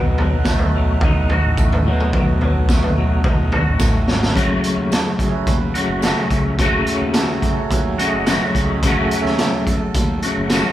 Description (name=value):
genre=psychedelic rock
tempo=107 BPM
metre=4/4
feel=straight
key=F# dorian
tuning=A4 = 439 Hz
part: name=hand-pumped harmonium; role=sustained chords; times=0.0-10.6 s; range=F#3 to F#5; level=-27 LUFS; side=right 6 dB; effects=none
part: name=twangy electric guitar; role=riff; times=0.0-10.7 s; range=F#2 to F#4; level=-20 LUFS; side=left 1 dB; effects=rotary speaker
part: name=fuzz fingered electric bass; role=bass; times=0.0-10.6 s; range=F#1 to B2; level=-24 LUFS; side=equal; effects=overdrive
part: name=raw garage drum kit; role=drums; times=0.2-10.6 s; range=hi-hat, kick drum, snare drum, toms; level=-18 LUFS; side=equal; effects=none
part: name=tambourine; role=percussion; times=0.5-10.7 s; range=none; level=-37 LUFS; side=right 7 dB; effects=none
room=moderate large studio reverb, RT60 1.1 s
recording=band playing live in one room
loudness=-15 LUFS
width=side -13 dB against mid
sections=0.0-4.4 A section; 4.4-10.7 B section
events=drum fill 3.8-4.4; harmonium solo 4.4-10.7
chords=0.0 B7; 4.4 F#m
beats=0.47 1.02 1.58 | 2.14 2.69 3.25 3.81 | 4.37 4.92 5.48 6.04 | 6.60 7.16 7.72 8.28 | 8.84 9.40 9.96 10.52